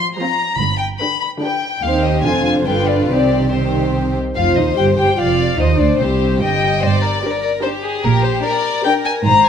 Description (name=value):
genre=quick classical-period movement for string orchestra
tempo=147 BPM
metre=3/4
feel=straight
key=C minor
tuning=A4 = 440 Hz
part: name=warm chamber violin section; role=melody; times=0.0-9.5 s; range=Ab4 to B5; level=-18 LUFS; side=left 5 dB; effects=none
part: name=warm chamber violin section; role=second line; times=0.0-9.5 s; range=F4 to Eb5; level=-21 LUFS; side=left 3 dB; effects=none
part: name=dark chamber viola section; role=accompaniment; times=0.0-9.1 s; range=D3 to G4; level=-21 LUFS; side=right 2 dB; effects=none
part: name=dark chamber cello section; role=bass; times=0.6-9.5 s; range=C2 to C3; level=-21 LUFS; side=right 2 dB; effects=none
part: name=dark chamber double bass section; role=bass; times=0.6-9.5 s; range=F1 to Eb2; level=-21 LUFS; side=right 4 dB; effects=none
room=moderate recital hall reverb, RT60 1.8 s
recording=dark, warm production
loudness=-14 LUFS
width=side -8 dB against mid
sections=0.0-4.4 A section; 4.4-9.5 A section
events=none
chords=0.0 F5; 0.6 G; 1.8 Cm/Eb; 2.2 Dm7b5/F; 2.7 G7; 3.1 Cm; 6.8 Gm; 8.0 Gm/Bb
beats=0.19 | 0.59 1.00 1.42 | 1.83 2.24 2.66 | 3.09 3.52 3.94 | 4.37 4.78 5.18 | 5.59 6.00 6.41 | 6.82 7.22 7.63 | 8.03 8.44 8.85 | 9.25